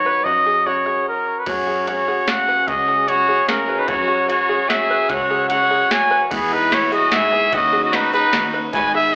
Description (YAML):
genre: indie folk with a building arrangement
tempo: 148 BPM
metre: 3/4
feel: straight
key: unclear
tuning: A4 = 436 Hz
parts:
  - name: clear trumpet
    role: melody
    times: 0.0-9.1 s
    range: G#4 to G#5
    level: -17 LUFS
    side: equal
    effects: slapback echo, digital delay
  - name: fingerpicked steel-string acoustic guitar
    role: accompaniment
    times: 0.0-5.1 s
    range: C#3 to B4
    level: -29 LUFS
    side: equal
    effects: slapback echo
  - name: open-back banjo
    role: arpeggios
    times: 0.0-9.1 s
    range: F#4 to B4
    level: -26 LUFS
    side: right 1 dB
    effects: slapback echo
  - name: picked electric bass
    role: bass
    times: 0.3-9.2 s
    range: G#1 to G#2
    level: -34 LUFS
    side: equal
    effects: none
  - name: picked steel-string acoustic guitar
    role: accompaniment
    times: 1.5-9.2 s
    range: G#2 to B4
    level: -28 LUFS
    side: left 1 dB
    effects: slapback echo
  - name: soft vintage rhythm box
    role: drums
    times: 1.5-8.8 s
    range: crash cymbal, hi-hat, kick drum, ride cymbal, snare drum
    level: -24 LUFS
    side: equal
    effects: slapback echo
  - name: warm fiddle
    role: second line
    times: 3.1-9.2 s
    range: B3 to C#5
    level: -22 LUFS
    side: equal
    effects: slapback echo
  - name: bright upright piano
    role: accompaniment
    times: 3.9-9.2 s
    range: F#1 to E5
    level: -32 LUFS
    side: equal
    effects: none
  - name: warm studio string section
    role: sustained chords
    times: 6.3-9.2 s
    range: B4 to E6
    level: -35 LUFS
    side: equal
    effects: none
  - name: egg shaker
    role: percussion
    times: 6.3-9.1 s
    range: none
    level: -50 LUFS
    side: left 1 dB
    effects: none
room: light reverb, small room ambience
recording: live gig heard through the venue's PA, club reverb, AM radio sound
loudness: -15 LUFS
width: side -27 dB against mid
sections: 0.0-1.5 A section; 1.5-6.3 B section; 6.3-9.2 C section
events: stop 1.1-1.5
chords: 0.3 F#; 1.5 F#sus2; 6.3 E; 7.5 Badd9/D#